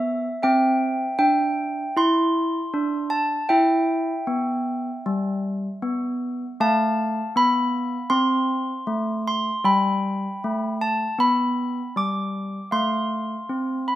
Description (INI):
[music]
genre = classical, tune for handbells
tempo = 78 BPM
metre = 4/4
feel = straight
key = unclear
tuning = A4 = 440 Hz
[part]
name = handbells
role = solo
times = 0.0-14.0 s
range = G3 to D6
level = -20 LUFS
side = equal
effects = none
[sound]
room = light reverb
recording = close, detailed microphones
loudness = -20 LUFS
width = side -14 dB against mid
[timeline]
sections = 0.0-14.0 A section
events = none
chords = 0.4 C; 3.5 G6; 6.6 F/A; 9.6 G; 12.7 F/A